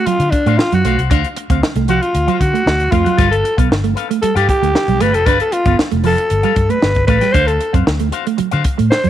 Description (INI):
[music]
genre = funk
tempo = 115 BPM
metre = 4/4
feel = straight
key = unclear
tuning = A4 = 440 Hz
[part]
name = breathy alto saxophone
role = melody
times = 0.0-9.1 s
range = D4 to C5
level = -16 LUFS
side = left 1 dB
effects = none
[part]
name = mellow electric guitar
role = riff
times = 0.0-9.1 s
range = E#3 to D4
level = -20 LUFS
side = right 10 dB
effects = none
[part]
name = electric guitar with an envelope filter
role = accompaniment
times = 0.1-9.1 s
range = F#4 to G5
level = -23 LUFS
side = left 12 dB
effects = tube saturation
[part]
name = vintage muted fingered electric bass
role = bass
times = 0.1-9.1 s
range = F1 to D3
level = -17 LUFS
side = left 1 dB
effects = none
[part]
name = compact cocktail drum kit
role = drums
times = 0.1-9.1 s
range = hi-hat, kick drum, snare drum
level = -18 LUFS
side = equal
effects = none
[sound]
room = light reverb, small room ambience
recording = 1960s-style stereo with parts hard left and right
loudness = -12 LUFS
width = side -11 dB against mid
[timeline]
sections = 0.0-9.1 A section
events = alto saxophone solo 0.0-9.1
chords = 0.0 D7#9; 3.2 G9; 7.4 D7#9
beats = 0.06 0.58 | 1.10 1.63 2.15 2.67 | 3.19 3.71 4.23 4.75 | 5.27 5.79 6.31 6.83 | 7.35 7.87 8.39 8.91